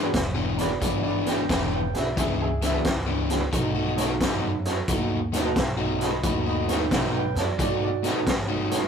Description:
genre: electric blues shuffle.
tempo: 89 BPM.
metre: 4/4.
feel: swing 66% on 8ths.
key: unclear.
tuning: A4 = 440 Hz.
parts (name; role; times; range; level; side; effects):
bright upright piano; accompaniment; 0.0-8.8 s; D4 to B5; -30 LUFS; right 4 dB; none.
overdriven semi-hollow guitar; riff; 0.0-8.9 s; B2 to G#4; -27 LUFS; left 2 dB; none.
upright bass; bass; 0.0-8.9 s; E1 to G#2; -31 LUFS; equal; none.
raw garage drum kit; drums; 0.1-8.8 s; hi-hat, kick drum, snare drum; -26 LUFS; equal; none.
room: light reverb.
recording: rough rehearsal-room recording, warm saturation.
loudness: -22 LUFS.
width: side -7 dB against mid.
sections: 0.0-8.9 A section.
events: none.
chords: 0.0 E7; 3.5 B7.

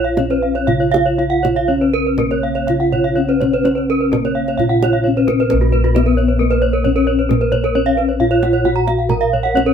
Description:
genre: Balinese gamelan.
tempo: 119-133 BPM.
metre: 4/4.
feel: straight.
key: Bb pelog.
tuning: A4 = 440 Hz.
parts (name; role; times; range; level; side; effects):
gamelan-type bronze metallophone; melody; 0.0-9.7 s; Bb3 to Bb4; -18 LUFS; left 2 dB; none.
gamelan-type bronze metallophone; arpeggios; 0.0-9.7 s; Bb4 to Bb5; -22 LUFS; left 4 dB; none.
gamelan-type bronze metallophone; arpeggios; 0.0-9.7 s; Gb4-20c to Bb5; -20 LUFS; right 6 dB; none.
gamelan-type bossed gongs; bass; 0.0-9.7 s; Bb1 to Bb4; -19 LUFS; equal; none.
kendang; percussion; 0.2-9.7 s; none; -23 LUFS; right 5 dB; none.
room: little or no reverb.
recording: minimal, uncompressed stereo recording.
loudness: -13 LUFS.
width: side -7 dB against mid.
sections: 0.0-5.5 A section; 5.5-9.7 B section.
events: none.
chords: none.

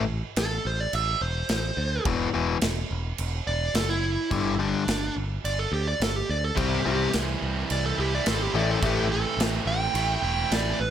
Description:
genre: hard rock.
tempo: 106 BPM.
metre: 4/4.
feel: straight.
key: A minor.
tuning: A4 = 441 Hz.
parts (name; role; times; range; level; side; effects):
biting overdriven guitar; riff; 0.0-9.1 s; E2 to C4; -26 LUFS; left 7 dB; none.
modern bright picked electric bass; bass; 0.0-10.9 s; E1 to D2; -29 LUFS; equal; none.
dark smooth lead guitar; melody; 0.4-10.9 s; D4 to G5; -28 LUFS; right 3 dB; overdrive.
big rock drum kit; drums; 0.4-10.7 s; crash cymbal, kick drum, snare drum; -31 LUFS; right 1 dB; none.
high-gain distorted guitar; riff; 6.6-10.8 s; A2 to E4; -29 LUFS; right 2 dB; distortion.
room: small room ambience.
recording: none.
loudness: -23 LUFS.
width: side -10 dB against mid.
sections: 0.0-10.9 A section.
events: lead electric guitar solo 0.0-10.9.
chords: 0.0 Am; 2.1 E5; 4.3 G5; 6.6 C; 8.5 Am.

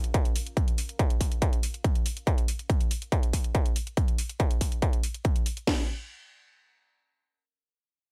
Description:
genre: driving peak-time techno.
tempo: 141 BPM.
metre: 4/4.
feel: straight.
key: Bb minor.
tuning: A4 = 440 Hz.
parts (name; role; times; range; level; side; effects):
electronic hi-hat; drums; 0.0-5.7 s; none; -39 LUFS; equal; overdrive.
deep dark ambient pad; texture; 0.0-2.3 s; Db4 to F5; -59 LUFS; equal; none.
techno drum kit; drums; 0.1-5.8 s; crash cymbal, kick drum, snare drum; -28 LUFS; equal; distortion, overdrive.
room: studio reverb.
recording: bright 1980s-style digital production.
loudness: -28 LUFS.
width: mono.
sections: 0.0-5.7 A section; 5.7-8.1 B section.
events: none.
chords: 0.0 Bbm; 5.7 N.C..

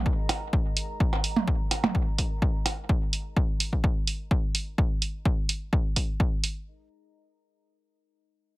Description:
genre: minimal techno.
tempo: 127 BPM.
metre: 4/4.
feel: swing 53% on 16ths.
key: unclear.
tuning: A4 = 439 Hz.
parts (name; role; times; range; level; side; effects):
deep dark ambient pad; texture; 0.1-2.9 s; G#4 to A#5; -43 LUFS; right 2 dB; chorus, built-in reverb, sidechain pumping.
electronic kick drum; drums; 0.1-6.3 s; none; -25 LUFS; equal; none.
electronic hi-hat; drums; 0.3-6.5 s; none; -28 LUFS; right 3 dB; none.
electronic percussion blips and toms; percussion; 0.3-2.8 s; none; -28 LUFS; right 3 dB; overdrive.
room: little or no reverb.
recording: heavily compressed radio sound, multiband compression.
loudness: -24 LUFS.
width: side -19 dB against mid.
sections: 0.0-6.7 A section.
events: fade-out on ambient pad 0.0-2.9.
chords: 0.0 G#5.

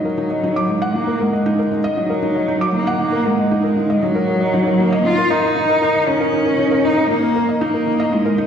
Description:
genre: electronica.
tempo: 117 BPM.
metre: 4/4.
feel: straight.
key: Eb minor.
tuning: A4 = 440 Hz.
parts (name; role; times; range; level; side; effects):
dark cello; melody; 0.0-8.5 s; Gb3 to F4; -17 LUFS; right 1 dB; shimmer reverb.
felt-muted upright piano; riff; 0.0-8.5 s; Eb4 to D6; -19 LUFS; left 1 dB; shimmer reverb.
room: wet recital hall reverb, RT60 1.6 s.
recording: none.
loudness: -15 LUFS.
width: side -8 dB against mid.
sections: 0.0-7.1 A section; 7.1-8.5 B section.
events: build-up 0.0-7.1; drop 7.1-8.5.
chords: 0.0 Ebm; 7.1 Eb5.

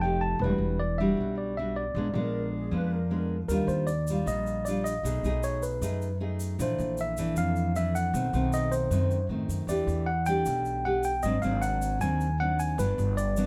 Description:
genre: bossa nova.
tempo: 155 BPM.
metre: 4/4.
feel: straight.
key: unclear.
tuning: A4 = 440 Hz.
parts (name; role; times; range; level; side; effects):
bright tine electric piano; melody; 0.0-13.5 s; Bb4 to A5; -34 LUFS; equal; plate reverb.
nylon-string guitar; accompaniment; 0.0-13.5 s; F2 to G#4; -32 LUFS; equal; none.
upright bass; bass; 0.0-13.5 s; E1 to A2; -33 LUFS; equal; none.
mellow hollow large flute ensemble; second line; 2.1-3.4 s; Ab4 to Cb5; -40 LUFS; equal; none.
egg shaker; percussion; 3.5-13.5 s; none; -48 LUFS; equal; none.
room: light reverb.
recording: none.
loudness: -28 LUFS.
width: mono.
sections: 0.0-13.5 A section.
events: none.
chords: 0.4 Em9; 2.0 Bb7b9; 3.5 Ebmaj9; 5.0 B6; 6.6 Bbmaj9#11; 8.1 B7b9; 9.7 Em7; 11.2 Ab7#11; 12.8 Gmaj7.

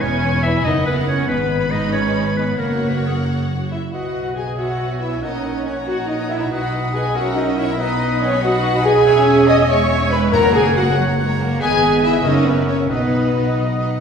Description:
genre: quick classical-period movement for symphony orchestra.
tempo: 93 BPM (dotted quarters).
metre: 6/8.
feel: straight.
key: B major.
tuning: A4 = 441 Hz.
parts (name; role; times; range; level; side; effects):
rich studio violin section; melody; 0.0-13.6 s; B4 to D#6; -28 LUFS; left 5 dB; none.
bright clarinet; second line; 0.0-14.0 s; G#4 to E5; -26 LUFS; equal; none.
warm studio violin section; second line; 0.0-14.0 s; D#4 to B5; -28 LUFS; left 3 dB; none.
clear studio viola section; accompaniment; 0.0-13.6 s; A#3 to D#5; -24 LUFS; right 1 dB; none.
rich studio cello section; bass; 0.0-13.9 s; E2 to D#4; -24 LUFS; right 4 dB; none.
rich studio double bass section; bass; 0.0-14.0 s; E1 to B1; -22 LUFS; equal; none.
silver concert flute; second line; 3.7-13.5 s; B4 to D#6; -27 LUFS; left 1 dB; none.
clear French horn section; sustained chords; 3.7-13.6 s; B3 to D#5; -20 LUFS; left 1 dB; none.
warm oboe; second line; 3.9-14.0 s; D#5 to F#5; -28 LUFS; right 2 dB; none.
timpani; percussion; 10.3-10.9 s; F#2; -26 LUFS; left 1 dB; none.
room: wet scoring stage reverb, RT60 1.8 s.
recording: heard from further back in the room.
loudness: -15 LUFS.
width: side -6 dB against mid.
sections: 0.0-3.9 A section; 3.9-14.0 B section.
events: none.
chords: 0.0 C#m7/E; 0.7 F#7; 1.3 G#m; 2.6 F#; 3.9 B; 4.6 C#m7/B; 5.2 F#/A#; 6.5 B; 7.2 F#7/B; 7.8 B; 9.1 C#m/E; 10.3 F#; 11.6 G#m; 12.3 F#7; 12.9 B.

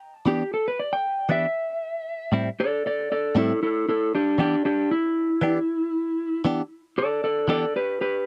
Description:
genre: blues.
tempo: 116 BPM.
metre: 4/4.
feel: straight.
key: E minor.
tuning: A4 = 439 Hz.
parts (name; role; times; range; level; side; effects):
electric slide guitar; melody; 0.3-8.3 s; D4 to G5; -26 LUFS; equal; none.
direct-recorded clean electric guitar; stabs; 0.3-7.6 s; A2 to G4; -25 LUFS; equal; phaser.
room: light reverb.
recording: dry, close 1970s-style studio recording.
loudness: -25 LUFS.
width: mono.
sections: 0.0-8.3 A section.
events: electric slide guitar solo 0.0-8.3.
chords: 0.0 Em7; 1.8 Am7; 3.9 Em7.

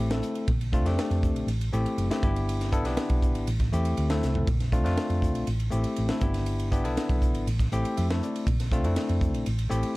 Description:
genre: electric jazz fusion.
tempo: 120 BPM.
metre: 4/4.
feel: straight.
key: Bb lydian.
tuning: A4 = 442 Hz.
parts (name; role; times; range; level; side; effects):
bell-like tine electric piano; accompaniment; 0.0-10.0 s; A3 to G5; -30 LUFS; left 2 dB; none.
hollow-body short-scale fingered electric bass; bass; 0.0-9.8 s; Gb1 to F2; -27 LUFS; equal; none.
crisp fusion drum kit; drums; 0.1-9.9 s; hi-hat, kick drum, ride cymbal, snare drum, toms; -29 LUFS; equal; none.
room: small room ambience.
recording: dark, warm production.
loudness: -24 LUFS.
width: side -20 dB against mid.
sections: 0.0-10.0 A section.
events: drum fill 4.2; tine electric piano fill 7.5-8.5.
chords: 0.5 Bbmaj9; 1.5 Am7; 2.2 Em7/G; 3.5 Am7; 4.5 Bbmaj9; 5.5 Am7; 6.2 Em7/G; 7.5 Fmaj9/A; 8.5 Bbmaj9; 9.5 Am7.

